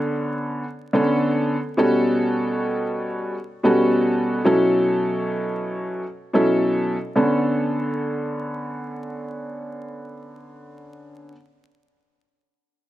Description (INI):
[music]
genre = hip hop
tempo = 89 BPM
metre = 4/4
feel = swing 55% on 16ths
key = B minor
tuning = A4 = 439 Hz
[part]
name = dark upright piano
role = solo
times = 0.0-11.3 s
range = B2 to A4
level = -20 LUFS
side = equal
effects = high-pass filter, low-pass filter
[sound]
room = light reverb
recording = vinyl crackle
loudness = -19 LUFS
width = side -14 dB against mid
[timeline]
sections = 0.0-7.2 A section; 7.2-9.9 B section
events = none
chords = 0.0 Bm9; 1.8 A13/B; 4.5 F#m7/B; 7.2 Bm9